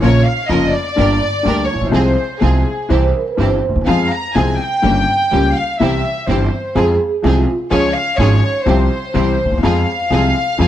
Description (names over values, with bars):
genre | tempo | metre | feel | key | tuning
tango | 125 BPM | 4/4 | rubato | F minor | A4 = 440 Hz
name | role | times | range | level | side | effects
warm studio violin section | second line | 0.0-10.7 s | Ab4 to Bb5 | -19 LUFS | left 1 dB | none
warm upright piano | accompaniment | 0.0-10.7 s | F1 to Ab4 | -17 LUFS | left 3 dB | none
clear studio string section | stabs | 0.0-10.7 s | Bb3 to Bb4 | -24 LUFS | right 4 dB | none
upright bass | bass | 0.0-10.7 s | F1 to F2 | -17 LUFS | right 1 dB | none
vibraphone with soft mallets | second line | 2.9-3.7, 6.8-7.6 s | F4 to C5 | -20 LUFS | right 7 dB | none
room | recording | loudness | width
small room reverb | dry, close 1970s-style studio recording | -13 LUFS | side -12 dB against mid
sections
0.0-10.7 A section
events
violin section solo 0.0-10.7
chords
0.0 Bbm; 1.0 Gm; 1.9 Fm/C; 2.9 C; 3.9 Fm; 4.8 Gdim; 5.8 C; 6.8 Fm; 7.7 Db; 8.7 Csus4; 9.1 C; 9.6 Fm